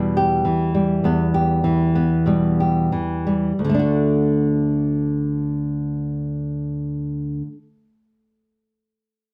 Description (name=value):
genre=folk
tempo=44-53 BPM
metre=4/4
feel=straight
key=D major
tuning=A4 = 437 Hz
part: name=nylon-string guitar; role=accompaniment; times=0.0-7.6 s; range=D2 to G4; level=-20 LUFS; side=equal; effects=none
room=moderate studio reverb, RT60 0.5 s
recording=none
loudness=-20 LUFS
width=mono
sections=0.0-3.6 A section; 3.6-9.0 B section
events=slowing down 0.0-3.6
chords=0.0 Em; 3.6 D